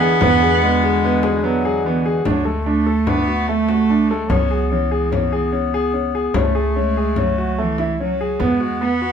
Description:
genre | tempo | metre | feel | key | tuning
contemporary instrumental, chamber music in an uneven meter | 147 BPM | 5/4 | straight | D lydian | A4 = 440 Hz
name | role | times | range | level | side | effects
warm cello | melody | 0.0-9.1 s | E3 to B3 | -21 LUFS | right 4 dB | none
warm clarinet | second line | 0.0-9.1 s | E3 to B3 | -23 LUFS | left 2 dB | none
pedal harmonium | sustained chords | 0.0-2.2 s | D3 to F#4 | -24 LUFS | left 4 dB | none
clear grand piano | arpeggios | 0.0-9.1 s | A3 to A4 | -20 LUFS | equal | none
upright bass | bass | 0.0-9.1 s | C#2 to E2 | -24 LUFS | equal | none
frame drum | percussion | 0.2-8.9 s | none | -25 LUFS | left 4 dB | none
room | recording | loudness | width
moderate studio reverb, RT60 0.6 s | none | -16 LUFS | side -7 dB against mid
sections
0.0-2.3 A section; 2.3-9.1 B section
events
none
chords
0.0 E7; 2.3 D; 4.3 C#m; 6.3 Amaj7/C#; 8.4 Eadd9

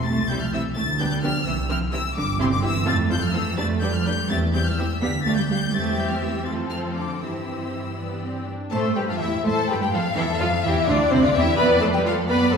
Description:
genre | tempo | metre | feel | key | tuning
quick classical-period movement for string orchestra | 84 BPM (dotted quarters) | 6/8 | rubato | unclear | A4 = 440 Hz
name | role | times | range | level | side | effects
rich studio violin section | melody | 0.0-12.6 s | C5 to B6 | -26 LUFS | left 5 dB | none
warm studio cello section | bass | 0.0-12.6 s | C3 to B3 | -26 LUFS | right 2 dB | none
rich studio double bass section | bass | 0.1-12.6 s | G1 to A2 | -26 LUFS | right 2 dB | none
rich studio violin section | second line | 0.3-12.6 s | E4 to G5 | -30 LUFS | left 3 dB | none
rich studio viola section | accompaniment | 0.3-12.6 s | B3 to B4 | -27 LUFS | right 1 dB | none
room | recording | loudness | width
wet scoring stage reverb, RT60 2.0 s | heard from further back in the room | -20 LUFS | side -6 dB against mid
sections
0.0-8.7 A section; 8.7-12.6 B section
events
none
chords
0.1 C; 0.8 G7/D; 1.5 C; 2.9 F; 3.6 G7/F; 4.3 C/E; 5.0 G7/D; 5.7 C/E; 6.5 F; 7.2 C/G; 8.0 G; 8.7 Fmaj9; 10.2 Fmaj13; 11.6 G9/F

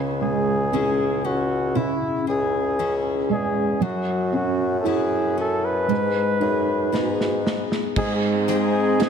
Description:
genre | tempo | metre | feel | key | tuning
pop ballad | 58 BPM | 4/4 | straight | C# minor | A4 = 438 Hz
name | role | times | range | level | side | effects
felt-muted upright piano | accompaniment | 0.0-9.1 s | C#3 to B#4 | -25 LUFS | right 4 dB | ensemble chorus
picked steel-string acoustic guitar | arpeggios | 0.0-9.1 s | G#2 to B4 | -29 LUFS | left 9 dB | none
clear bassoon | bass | 0.0-9.1 s | C#2 to G#2 | -26 LUFS | equal | none
breathy flugelhorn | melody | 0.2-9.1 s | E4 to B4 | -25 LUFS | left 1 dB | ping-pong delay
modern studio drum kit | drums | 6.9-9.1 s | crash cymbal, hi-hat, kick drum, snare drum | -27 LUFS | right 1 dB | none
airy breathy pad | sustained chords | 8.2-9.1 s | G#3 to D#4 | -25 LUFS | equal | chorus
room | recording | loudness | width
moderate plate reverb, RT60 3.1 s | dreamy mix soaked in reverb | -20 LUFS | side -7 dB against mid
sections
0.0-8.0 A section; 8.0-9.1 B section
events
drum fill 6.9-8.0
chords
0.0 C#m; 3.8 F#7sus4; 5.9 G#m7; 8.0 G#

